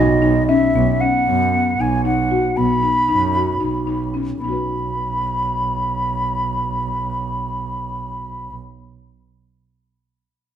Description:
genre	contemporary instrumental, chamber music in an uneven meter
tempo	229 BPM (eighths)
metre	7/8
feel	straight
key	B major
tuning	A4 = 439 Hz
part	hollow wooden flute	melody	0.0-8.6 s	D#5 to B5	-20 LUFS	left 1 dB	none
part	buzzing marimba with soft mallets	arpeggios	0.0-8.7 s	B3 to B4	-20 LUFS	left 4 dB	none
part	rich double bass	bass	0.0-8.6 s	B1 to F#2	-23 LUFS	right 6 dB	none
part	frame drum	percussion	0.2-0.6 s	none	-28 LUFS	left 3 dB	none
room	moderate recital hall reverb, RT60 1.5 s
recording	minimal, uncompressed stereo recording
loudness	-17 LUFS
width	side -9 dB against mid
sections	0.7-4.4 A section; 4.4-8.1 B section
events	none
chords	0.0 B

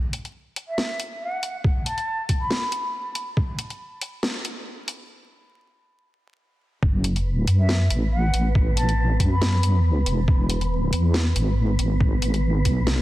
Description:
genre	deep dubstep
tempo	139 BPM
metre	4/4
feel	swing 54% on 16ths, half-time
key	F# minor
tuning	A4 = 442 Hz
part	garage drum kit	drums	0.1-13.0 s	hi-hat, snare drum	-28 LUFS	equal	small room ambience
part	breathy ney	melody	0.7-2.8, 7.6-9.7 s	E5 to B5	-30 LUFS	equal	vintage 12-bit sampler grit, low-pass filter, dub echo
part	electronic kick drum	drums	1.6-3.5, 6.8-12.7 s	none	-22 LUFS	equal	small room ambience
part	deep soft wobble bass	bass	6.8-13.0 s	E1 to F#2	-20 LUFS	equal	chorus
part	wind-like tuned noise texture	texture	7.3-13.0 s	B3 to B4	-30 LUFS	right 2 dB	built-in reverb
room	light reverb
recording	dense, heavily limited modern master, vinyl crackle, high-pass filter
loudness	-20 LUFS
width	side -16 dB against mid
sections	0.0-6.8 A section; 6.8-13.0 B section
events	build-up 0.0-6.8; filter sweep on ney 0.0-6.8; break 5.1-6.8; drop 6.8-13.0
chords	0.0 N.C.; 6.8 F#m; 10.3 E

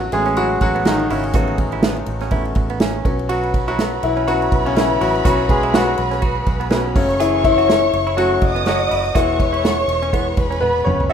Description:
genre	piano-driven pop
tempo	123 BPM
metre	4/4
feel	swing 56% on 16ths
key	E major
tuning	A4 = 435 Hz
part	bright grand piano	accompaniment	0.0-11.1 s	B2 to E5	-18 LUFS	left 3 dB	none
part	vintage muted fingered electric bass	bass	0.0-11.1 s	E1 to B1	-25 LUFS	right 1 dB	none
part	unplugged drum kit	drums	0.1-11.1 s	hi-hat, kick drum, ride cymbal, snare drum, toms	-21 LUFS	right 1 dB	none
part	direct-recorded clean electric guitar	riff	0.3-11.1 s	B3 to G#4	-28 LUFS	right 10 dB	none
part	warm studio violin section	second line	3.3-11.1 s	B4 to D#6	-22 LUFS	right 1 dB	ping-pong delay
room	light reverb, small room reverb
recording	rough home demo mix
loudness	-15 LUFS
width	side -8 dB against mid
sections	0.0-11.1 A section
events	grand piano solo 0.0-11.1; drum fill 10.6-11.1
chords	0.0 Aadd9; 3.1 Bsus2; 7.0 F#m; 9.2 E

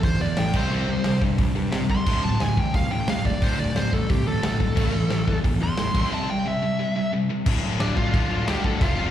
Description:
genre	punk rock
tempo	178 BPM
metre	4/4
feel	straight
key	D minor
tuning	A4 = 440 Hz
part	bluesy overdriven lead guitar	melody	0.0-9.1 s	D4 to C6	-28 LUFS	equal	distortion, slapback echo
part	crunchy overdriven guitar	riff	0.0-7.5 s	D2 to C4	-28 LUFS	right 8 dB	slapback echo
part	tight distorted guitar	riff	0.0-9.1 s	D2 to C4	-28 LUFS	left 9 dB	distortion
part	fuzz picked electric bass	bass	0.0-9.1 s	D1 to C3	-26 LUFS	equal	overdrive
part	big rock drum kit	drums	0.0-8.9 s	crash cymbal, hi-hat, kick drum, snare drum	-25 LUFS	equal	none
room	small room ambience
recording	live gig heard through the venue's PA, recital hall reverb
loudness	-20 LUFS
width	side -11 dB against mid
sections	0.0-7.5 A section; 7.5-9.1 B section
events	lead electric guitar solo 0.0-7.5; break 6.1-7.5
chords	0.0 A5; 0.5 C5; 2.1 D5; 4.8 Am; 5.9 C; 7.5 Dm

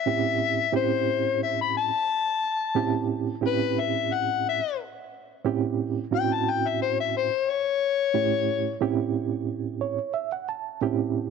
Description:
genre	blues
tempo	89 BPM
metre	4/4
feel	straight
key	A mixolydian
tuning	A4 = 440 Hz
part	overdriven harmonica	melody	0.0-8.8 s	B4 to B5	-25 LUFS	left 9 dB	none
part	bright reed electric piano	accompaniment	0.1-11.3 s	A2 to A5	-26 LUFS	right 8 dB	tremolo
room	moderate plate reverb, RT60 3.2 s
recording	1960s-style stereo with parts hard left and right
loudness	-24 LUFS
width	side -5 dB against mid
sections	0.0-5.4 A section; 5.4-11.3 B section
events	harmonica solo 5.4-11.3; reed electric piano fill 9.5-10.8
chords	0.1 A7#9

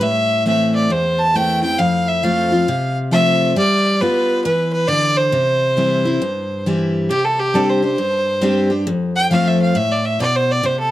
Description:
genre	country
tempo	136 BPM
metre	4/4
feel	swing 64% on 8ths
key	C major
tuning	A4 = 441 Hz
part	clear fiddle	melody	0.0-10.9 s	G4 to A5	-17 LUFS	right 1 dB	none
part	picked steel-string acoustic guitar	accompaniment	0.0-10.9 s	E2 to G4	-18 LUFS	left 1 dB	none
room	studio ambience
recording	dry, close 1970s-style studio recording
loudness	-14 LUFS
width	side -14 dB against mid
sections	0.0-7.1 A section; 7.1-10.9 B section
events	fiddle solo 7.1-10.9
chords	0.0 Am; 1.8 F; 3.6 G7; 5.3 C; 7.1 Csus2; 8.9 F

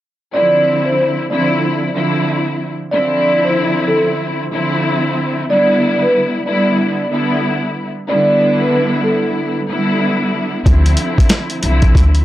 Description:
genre	hip hop, boom-bap hip-hop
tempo	93 BPM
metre	4/4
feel	swing 62% on 16ths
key	D dorian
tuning	A4 = 441 Hz
part	vibraphone with soft mallets	melody	0.3-9.2 s	A4 to D5	-16 LUFS	right 1 dB	high-pass filter, low-pass filter, plate reverb, tape echo
part	muted studio string section	accompaniment	0.3-12.2 s	D3 to E4	-16 LUFS	equal	high-pass filter, low-pass filter
part	upright bass	bass	10.7-12.2 s	C2 to D2	-12 LUFS	equal	none
part	dusty soul sampler-style drum kit	drums	10.7-12.2 s	hi-hat, kick drum, snare drum	-12 LUFS	equal	none
room	moderate small room reverb, RT60 0.5 s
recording	none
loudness	-13 LUFS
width	side -14 dB against mid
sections	0.3-10.7 A section; 10.7-12.2 B section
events	none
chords	0.3 Dm9; 5.5 Em7; 10.7 Dm9

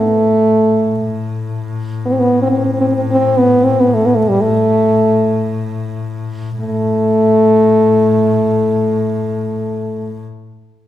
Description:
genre	Turkish makam ensemble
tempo	free time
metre	none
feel	none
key	unclear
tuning	A4 = 440 Hz
part	mellow French horn	melody	0.0-10.2 s	G3 to C4+20c	-12 LUFS	equal	none
part	clear double bass	drone	0.0-10.2 s	A2	-21 LUFS	left 5 dB	none
room	wet recital hall reverb, RT60 1.5 s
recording	minimal, uncompressed stereo recording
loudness	-12 LUFS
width	side -12 dB against mid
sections	0.0-6.6 A section; 6.6-9.4 B section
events	none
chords	none

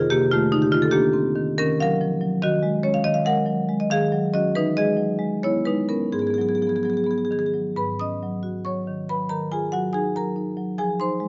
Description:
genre	classical, contemporary piece for solo marimba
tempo	246-291 BPM (eighths)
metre	7/8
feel	rubato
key	G# dorian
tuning	A4 = 439 Hz
part	marimba with medium mallets	solo	0.0-11.3 s	G#2 to D#6	-23 LUFS	equal	none
room	light reverb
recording	nothing above 7.6 kHz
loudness	-23 LUFS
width	mono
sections	0.0-7.8 A section; 7.8-11.3 B section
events	none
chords	0.1 Cm9; 1.6 D#m9; 2.4 D#m11; 3.1 G#sus2/D#; 3.9 D#m7; 4.6 Emaj7; 6.1 G#m7; 9.3 D#madd9; 10.8 Fm7

